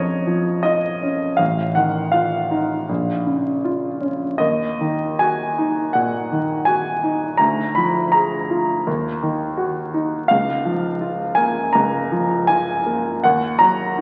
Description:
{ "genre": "classical, romantic character piece for solo piano", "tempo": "81 BPM", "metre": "4/4", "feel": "rubato", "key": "Bb minor", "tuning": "A4 = 440 Hz", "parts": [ { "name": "clear concert grand piano", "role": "solo", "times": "0.0-14.0 s", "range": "A1 to Cb6", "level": "-20 LUFS", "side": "equal", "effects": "none" } ], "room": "wet concert hall reverb, RT60 2.2 s", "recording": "very old 78 rpm record, vinyl crackle", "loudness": "-20 LUFS", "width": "mono", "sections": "0.0-14.0 A section", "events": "none", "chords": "0.0 Bbm; 1.4 F7/A; 2.9 Bbm; 4.4 Ebm; 7.4 Bb7/D; 8.9 Ebm; 10.3 Bbm/Db; 13.2 Cdim/Eb (rootless)" }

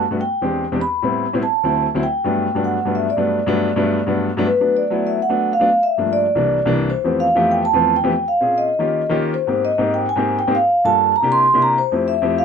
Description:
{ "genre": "jazz", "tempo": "197 BPM", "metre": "4/4", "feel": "straight", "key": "G major", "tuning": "A4 = 440 Hz", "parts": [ { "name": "vibraphone with soft mallets", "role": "melody", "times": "0.0-12.4 s", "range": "B4 to C6", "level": "-17 LUFS", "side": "right 1 dB", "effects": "none" }, { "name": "warm baby grand piano", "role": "accompaniment", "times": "0.0-12.4 s", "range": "C2 to A4", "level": "-20 LUFS", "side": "left 2 dB", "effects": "none" } ], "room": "light reverb", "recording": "close, detailed microphones", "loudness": "-15 LUFS", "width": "side -6 dB against mid", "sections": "0.0-4.5 A section; 4.5-12.4 B section", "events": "none", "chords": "0.2 E7alt; 0.8 Am7; 1.4 D7; 2.0 Gmaj9; 4.5 Bm7; 5.7 Gm9; 6.3 C7; 6.9 Fmaj9#11; 8.1 Bbm7; 8.7 Eb7; 9.3 Abmaj9; 10.5 Gm7; 11.2 C7; 11.8 Fmaj9" }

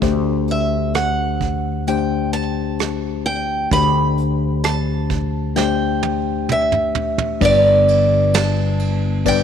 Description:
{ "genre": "acoustic folk-pop ballad", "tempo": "65 BPM", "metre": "4/4", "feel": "straight", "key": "unclear", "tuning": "A4 = 440 Hz", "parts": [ { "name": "mellow tine electric piano", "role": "accompaniment", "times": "0.0-9.4 s", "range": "G1 to D5", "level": "-21 LUFS", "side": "left 10 dB", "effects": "overdrive" }, { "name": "fretless electric bass", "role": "bass", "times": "0.0-9.4 s", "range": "G1 to D2", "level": "-22 LUFS", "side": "right 2 dB", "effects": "none" }, { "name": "soft brush drum kit", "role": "drums", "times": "0.0-9.4 s", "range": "crash cymbal, hi-hat, kick drum, ride cymbal, rim click, snare drum, toms", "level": "-24 LUFS", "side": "right 6 dB", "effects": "none" }, { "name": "picked old ladder-braced acoustic guitar", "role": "melody", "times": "0.5-9.4 s", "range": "D5 to B5", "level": "-19 LUFS", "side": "right 2 dB", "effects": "slapback echo" } ], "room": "moderate plate reverb, RT60 2.7 s", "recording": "1960s-style stereo with parts hard left and right", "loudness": "-16 LUFS", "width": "side -8 dB against mid", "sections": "0.0-7.4 A section; 7.4-9.4 B section", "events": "drum fill 5.6-7.4", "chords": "0.0 D7sus4; 7.4 G" }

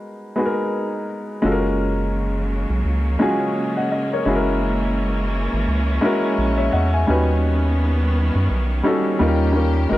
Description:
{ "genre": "hip hop", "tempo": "85 BPM", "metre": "4/4", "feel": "swing 58% on 16ths", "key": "F# major", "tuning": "A4 = 441 Hz", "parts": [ { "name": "dark upright piano", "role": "accompaniment", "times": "0.0-10.0 s", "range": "G3 to G#5", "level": "-20 LUFS", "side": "left 1 dB", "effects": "cassette tape, low-pass filter" }, { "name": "clear studio string section", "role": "sustained chords", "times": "1.4-10.0 s", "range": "C#3 to G4", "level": "-27 LUFS", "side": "equal", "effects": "low-pass filter" }, { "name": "round analog bass", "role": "bass", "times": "1.4-10.0 s", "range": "F#1 to F#2", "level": "-20 LUFS", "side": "equal", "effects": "none" } ], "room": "light reverb, small room ambience", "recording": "dark, warm production", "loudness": "-18 LUFS", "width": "side -16 dB against mid", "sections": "0.0-1.4 A section; 1.4-10.0 B section", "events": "none", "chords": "0.0 G#m7; 1.4 F#maj7; 4.3 F#9; 7.1 D#7alt; 9.2 D#7" }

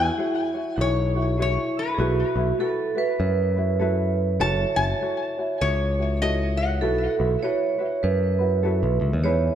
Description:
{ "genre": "Hawaiian", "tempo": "99 BPM", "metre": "4/4", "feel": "swing 60% on 8ths", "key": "unclear", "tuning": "A4 = 440 Hz", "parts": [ { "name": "metal-body resonator slide guitar", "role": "melody", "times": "0.0-7.1 s", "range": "B4 to A5", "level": "-28 LUFS", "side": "left 4 dB", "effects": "ping-pong delay" }, { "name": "vibraphone with medium hard mallets", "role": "second line", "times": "0.0-9.6 s", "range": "E4 to C#5", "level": "-26 LUFS", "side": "right 5 dB", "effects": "none" }, { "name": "ukulele", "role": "accompaniment", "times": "0.0-9.6 s", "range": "D#4 to C#5", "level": "-28 LUFS", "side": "left 2 dB", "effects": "none" }, { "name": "modern bright picked electric bass", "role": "bass", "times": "0.0-9.5 s", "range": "F#1 to F#2", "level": "-24 LUFS", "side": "equal", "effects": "none" } ], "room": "light reverb", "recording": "dark, warm production", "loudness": "-21 LUFS", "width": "side -9 dB against mid", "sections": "0.0-9.6 A section", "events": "none", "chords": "0.0 E69; 2.0 B7sus4; 4.4 F#m7; 6.8 B7sus4" }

